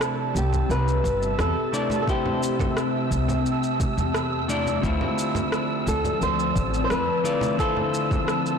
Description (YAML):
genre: sunset chillout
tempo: 87 BPM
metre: 4/4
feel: straight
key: C major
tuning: A4 = 435 Hz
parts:
  - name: clean electric guitar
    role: accompaniment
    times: 0.0-8.6 s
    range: C3 to D5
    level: -28 LUFS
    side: moving between left 4 dB and right 5 dB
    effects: auto-pan, digital delay
  - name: ethereal airy pad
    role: sustained chords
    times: 0.0-8.6 s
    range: F3 to A5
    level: -28 LUFS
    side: left 1 dB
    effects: ensemble chorus, built-in reverb, phaser
  - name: electronic rim click and shaker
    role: drums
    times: 0.0-8.6 s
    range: none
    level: -32 LUFS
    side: left 1 dB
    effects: overdrive
  - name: wind-like tuned noise texture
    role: texture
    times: 0.0-8.6 s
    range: E6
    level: -33 LUFS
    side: right 2 dB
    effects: built-in reverb
  - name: upright bass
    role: bass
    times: 0.3-7.0 s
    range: G1 to F2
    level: -26 LUFS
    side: equal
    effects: transformer saturation
  - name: congas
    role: percussion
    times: 0.3-8.2 s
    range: none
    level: -32 LUFS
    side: right 3 dB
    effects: none
  - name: flamenco guitar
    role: melody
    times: 0.4-8.6 s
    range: G4 to C5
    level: -27 LUFS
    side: equal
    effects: ping-pong delay
  - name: electronic kick drum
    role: drums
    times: 1.0-8.2 s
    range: none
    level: -27 LUFS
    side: equal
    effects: overdrive
room: moderate lush hall reverb, RT60 2.8 s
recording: blown-out, overdriven recording, overdrive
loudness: -21 LUFS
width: side -6 dB against mid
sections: 0.0-8.6 A section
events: none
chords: 0.0 C6; 4.8 Dm7